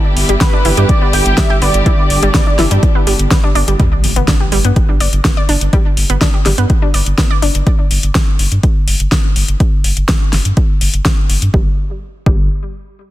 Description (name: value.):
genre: progressive house.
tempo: 124 BPM.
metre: 4/4.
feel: straight.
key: G major.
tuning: A4 = 440 Hz.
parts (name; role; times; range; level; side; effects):
rich studio string section; sustained chords; 0.0-3.8 s; D3 to G4; -20 LUFS; right 1 dB; sidechain pumping.
round analog bass; bass; 0.2-12.5 s; G1 to G2; -15 LUFS; equal; tube saturation, sidechain pumping.
deep house drum kit; drums; 0.2-11.5 s; hi-hat, snare drum; -18 LUFS; left 1 dB; overdrive, sidechain pumping on hats.
analog pluck; arpeggios; 0.3-7.5, 11.5-12.5 s; E3 to G5; -19 LUFS; equal; chorus, sidechain pumping, digital delay.
wide unison lead; melody; 0.4-3.3 s; B4 to G5; -20 LUFS; right 1 dB; analog chorus, cassette tape, ping-pong delay.
electronic kick drum; drums; 0.4-12.4 s; none; -14 LUFS; equal; overdrive.
impact; sound effects; 3.8-5.7 s; none; -22 LUFS; equal; none.
room: digital ambience.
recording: dense, heavily limited modern master.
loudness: -10 LUFS.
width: side -15 dB against mid.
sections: 0.0-3.8 A section; 3.8-11.5 B section; 11.5-13.1 C section.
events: drop 0.0-3.8; impact 3.8-5.7.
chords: 0.0 Em7/G; 3.8 G; 7.7 N.C..